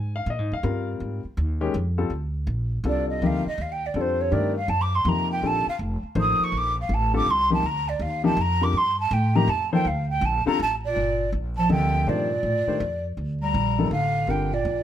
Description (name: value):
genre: modal jazz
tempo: 163 BPM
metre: 3/4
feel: swing 65% on 8ths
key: G minor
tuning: A4 = 440 Hz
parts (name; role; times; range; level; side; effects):
- warm grand piano; accompaniment; 0.0-14.5 s; C3 to Ab5; -26 LUFS; left 4 dB; none
- upright bass; bass; 0.0-14.8 s; F1 to Bb2; -26 LUFS; right 1 dB; none
- breathy mellow jazz flute; melody; 2.9-14.8 s; C5 to Eb6; -24 LUFS; right 1 dB; plate reverb
- mellow bass clarinet; second line; 10.8-14.8 s; Bb2 to G3; -28 LUFS; right 3 dB; none
room: light reverb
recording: none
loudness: -22 LUFS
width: side -10 dB against mid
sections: 0.0-2.1 A section; 2.1-11.0 A section; 11.0-14.8 B section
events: flute solo 2.1-11.0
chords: 0.0 Fm11; 2.1 Gm9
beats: 0.27 0.64 | 1.01 1.37 1.74 | 2.11 2.48 2.84 | 3.21 3.58 3.94 | 4.31 4.68 5.05 | 5.42 5.79 6.15 | 6.52 6.89 7.26 | 7.63 8.00 8.37 | 8.74 9.11 9.48 | 9.85 10.21 10.59 | 10.96 11.32 11.69 | 12.06 12.43 12.80 | 13.17 13.54 13.91 | 14.28 14.65